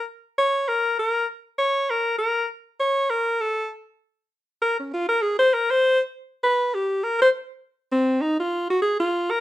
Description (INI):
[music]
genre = jazz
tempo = 198 BPM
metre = 4/4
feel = swing 61% on 8ths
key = Bb minor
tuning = A4 = 438 Hz
[part]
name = warm alto saxophone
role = solo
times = 0.0-9.4 s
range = C4 to Db5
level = -20 LUFS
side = equal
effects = none
[sound]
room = moderate studio reverb, RT60 0.6 s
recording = none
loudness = -20 LUFS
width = side -15 dB against mid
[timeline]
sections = 0.0-8.2 A section; 8.2-9.4 B section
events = alto saxophone solo 0.0-8.2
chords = none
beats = 0.06 0.36 0.67 | 0.97 1.27 1.57 1.88 | 2.18 2.48 2.78 3.09 | 3.39 3.69 3.99 4.30 | 4.60 4.90 5.20 5.51 | 5.81 6.11 6.41 6.71 | 7.02 7.32 7.62 7.92 | 8.23 8.53 8.83 9.13